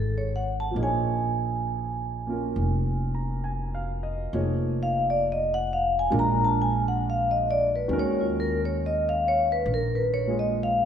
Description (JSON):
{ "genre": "jazz ballad", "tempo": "67 BPM", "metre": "4/4", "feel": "swing 69% on 8ths", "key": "unclear", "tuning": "A4 = 439 Hz", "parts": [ { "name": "vibraphone with medium mallets", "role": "melody", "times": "0.0-10.9 s", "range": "F4 to Bb5", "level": "-25 LUFS", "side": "left 1 dB", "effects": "none" }, { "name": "warm grand piano", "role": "accompaniment", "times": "0.0-10.9 s", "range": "D#3 to Bb5", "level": "-31 LUFS", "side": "right 1 dB", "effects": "none" }, { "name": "upright bass", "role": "bass", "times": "0.0-10.9 s", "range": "F1 to Eb2", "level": "-28 LUFS", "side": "right 1 dB", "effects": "none" } ], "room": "wet scoring stage reverb, RT60 1.5 s", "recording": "recorded in a church or concert hall", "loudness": "-23 LUFS", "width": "side -8 dB against mid", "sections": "0.0-10.9 A section", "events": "vibraphone solo 0.0-10.9", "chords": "0.0 B9; 0.8 Gbmaj13 (rootless); 6.1 Bb7; 7.9 Ebm9" }